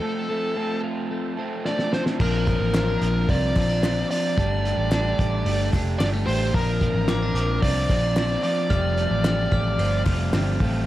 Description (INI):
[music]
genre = jangly indie pop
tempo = 111 BPM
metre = 4/4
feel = straight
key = Bb major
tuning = A4 = 439 Hz
[part]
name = high-gain lead guitar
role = melody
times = 0.0-10.0 s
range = A4 to D5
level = -27 LUFS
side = equal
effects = distortion, analog delay
[part]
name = crunchy overdriven guitar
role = accompaniment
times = 0.0-10.9 s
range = F2 to A4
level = -30 LUFS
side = right 5 dB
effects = none
[part]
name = twelve-string electric guitar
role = arpeggios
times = 0.0-10.9 s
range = F3 to G4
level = -29 LUFS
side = left 4 dB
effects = none
[part]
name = cloth-damped thuddy drum kit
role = drums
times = 1.7-10.7 s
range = crash cymbal, hi-hat, kick drum, snare drum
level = -26 LUFS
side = equal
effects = none
[part]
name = glockenspiel with hard plastic mallets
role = second line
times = 2.2-10.6 s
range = A5 to F6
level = -35 LUFS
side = left 3 dB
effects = none
[part]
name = vintage muted picked electric bass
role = bass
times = 2.2-10.8 s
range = F1 to C2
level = -24 LUFS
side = equal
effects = none
[part]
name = group handclap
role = percussion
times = 2.7-10.5 s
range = none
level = -43 LUFS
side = left 5 dB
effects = none
[sound]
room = light reverb, small room ambience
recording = dark, warm production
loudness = -20 LUFS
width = side -14 dB against mid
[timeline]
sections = 0.0-2.2 A section; 2.2-10.9 B section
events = break 0.0-2.2; drum fill 1.7-2.2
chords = 0.0 F; 2.2 Bbadd9; 4.4 Gsus2; 6.5 Bbadd9; 8.7 Fadd9